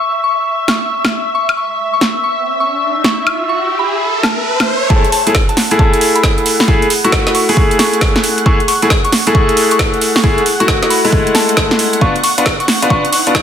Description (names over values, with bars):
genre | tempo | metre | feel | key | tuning
UK garage, two-step garage | 135 BPM | 4/4 | swing 64% on 16ths | F# minor | A4 = 441 Hz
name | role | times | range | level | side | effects
soft synth bell | melody | 0.0-13.3 s | A5 to C#6 | -18 LUFS | left 2 dB | chorus, dub echo
soft string machine | sustained chords | 0.0-13.4 s | E5 to F#5 | -21 LUFS | equal | ensemble chorus, sidechain pumping
garage drum kit | drums | 0.7-13.4 s | hi-hat, snare drum, woodblock | -15 LUFS | right 1 dB | overdrive, studio reverb
riser | sound effects | 2.4-4.9, 12.8-13.4 s | none | -20 LUFS | right 2 dB | none
bright concert grand piano | stabs | 4.9-13.3 s | G#3 to G#4 | -14 LUFS | left 1 dB | low-pass filter
electronic kick drum | drums | 4.9-13.4 s | none | -14 LUFS | equal | studio reverb
room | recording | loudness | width
moderate digital room reverb, RT60 0.8 s, digital ambience | dense, heavily limited modern master, high-pass filter | -10 LUFS | side -8 dB against mid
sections
0.0-4.9 A section; 4.9-13.4 B section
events
riser 2.4-4.9; build-up 4.9-13.4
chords
0.0 N.C.; 4.9 F#m7; 12.0 Bmadd9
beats
0.01 0.46 0.90 | 1.35 1.79 2.24 2.68 | 3.12 3.57 4.01 4.46 | 4.90 5.35 5.79 6.24 | 6.68 7.12 7.57 8.01 | 8.46 8.90 9.35 9.79 | 10.24 10.68 11.12 11.57 | 12.01 12.46 12.90 13.35